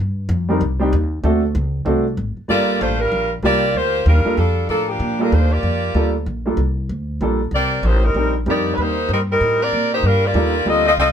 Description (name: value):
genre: jazz, big band swing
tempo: 191 BPM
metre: 4/4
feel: swing 61% on 8ths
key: G minor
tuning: A4 = 439 Hz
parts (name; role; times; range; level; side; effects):
- upright bass; bass; 0.0-11.1 s; G1 to Bb2; -19 LUFS; equal; none
- clear upright piano; accompaniment; 0.5-10.8 s; G3 to Bb4; -20 LUFS; right 1 dB; none
- warm saxophone section; melody; 2.5-11.1 s; F3 to Eb5; -18 LUFS; equal; none
room: light reverb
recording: band playing live in one room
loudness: -16 LUFS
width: side -8 dB against mid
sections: 0.0-2.5 A section; 2.5-11.1 B section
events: none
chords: 0.0 Gm7; 0.6 Cm; 1.2 D7; 2.5 Gm7; 7.5 Cm7; 10.0 Gm7